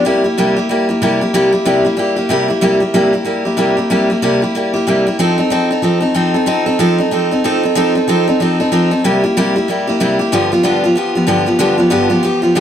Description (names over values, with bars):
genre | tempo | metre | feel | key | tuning
rock | 187 BPM | 4/4 | swing 61% on 8ths | C mixolydian | A4 = 438 Hz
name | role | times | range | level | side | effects
picked steel-string acoustic guitar | solo | 0.0-12.6 s | G2 to A4 | -12 LUFS | equal | none
room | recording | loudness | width
light reverb | none | -12 LUFS | side -9 dB against mid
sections
0.0-12.6 A section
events
none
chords
0.0 C7; 5.2 F7; 9.0 C7; 10.3 G7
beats
| 0.05 0.37 0.69 1.01 | 1.33 1.66 1.98 2.30 | 2.62 2.94 3.27 3.59 | 3.91 4.23 4.55 4.87 | 5.19 5.51 5.83 6.15 | 6.47 6.79 7.12 7.44 | 7.76 8.08 8.40 8.72 | 9.04 9.36 9.68 10.00 | 10.32 10.64 10.96 11.29 | 11.61 11.93 12.25 12.57